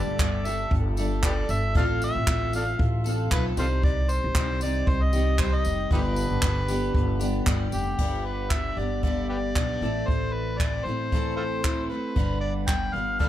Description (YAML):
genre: acoustic pop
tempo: 115 BPM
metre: 4/4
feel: swing 55% on 16ths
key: G mixolydian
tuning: A4 = 441 Hz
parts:
  - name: overdriven harmonica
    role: melody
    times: 0.0-13.3 s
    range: Eb4 to G5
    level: -30 LUFS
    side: left 1 dB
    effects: digital delay
  - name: picked steel-string acoustic guitar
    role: accompaniment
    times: 0.0-13.3 s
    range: G2 to B4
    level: -30 LUFS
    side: equal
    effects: double-tracked left and right
  - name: upright bass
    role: bass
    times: 0.0-13.3 s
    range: F1 to C2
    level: -28 LUFS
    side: equal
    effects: none
  - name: jazz brush drum kit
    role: drums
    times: 0.2-13.3 s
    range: crash cymbal, handclaps, kick drum, tambourine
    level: -26 LUFS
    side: equal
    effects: none
room: studio reverb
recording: dark, warm production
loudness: -23 LUFS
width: side -12 dB against mid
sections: 0.0-8.0 A section; 8.0-13.3 B section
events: none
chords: 0.0 Gsus2; 1.8 F/A; 3.6 Cm; 5.9 G; 9.8 Am; 12.2 G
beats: 0.20 0.71 1.23 | 1.75 2.27 2.79 3.31 | 3.83 4.35 4.87 5.39 | 5.91 6.43 6.95 7.47 | 7.99 8.51 9.04 9.56 | 10.08 10.60 11.12 11.64 | 12.16 12.68 13.21